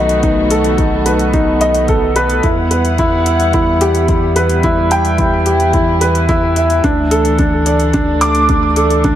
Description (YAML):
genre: piano and strings electronica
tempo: 109 BPM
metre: 4/4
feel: straight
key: E minor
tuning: A4 = 440 Hz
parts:
  - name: dark chamber string section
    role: sustained chords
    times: 0.0-9.2 s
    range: D#3 to F#5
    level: -19 LUFS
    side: equal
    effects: none
  - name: felt-muted upright piano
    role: riff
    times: 0.0-9.2 s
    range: D4 to D6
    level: -13 LUFS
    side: equal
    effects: low-pass filter, ping-pong delay
  - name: warm sub bass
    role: bass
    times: 0.0-9.2 s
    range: B1 to E2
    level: -18 LUFS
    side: equal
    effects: sidechain pumping
  - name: electronic hi-hat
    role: drums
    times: 0.1-9.2 s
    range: none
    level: -25 LUFS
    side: left 3 dB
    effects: none
  - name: electronic kick drum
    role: drums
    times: 0.2-9.2 s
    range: none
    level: -17 LUFS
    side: equal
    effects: none
room: moderate concert hall reverb, RT60 2.4 s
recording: none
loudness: -11 LUFS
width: side -11 dB against mid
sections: 0.0-9.2 A section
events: none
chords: 0.0 B7; 2.4 Emadd9; 6.8 Dsus2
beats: | 0.23 0.79 1.33 1.89 | 2.44 2.99 3.54 4.09 | 4.64 5.19 5.74 6.29 | 6.84 7.39 7.94 8.49 | 9.04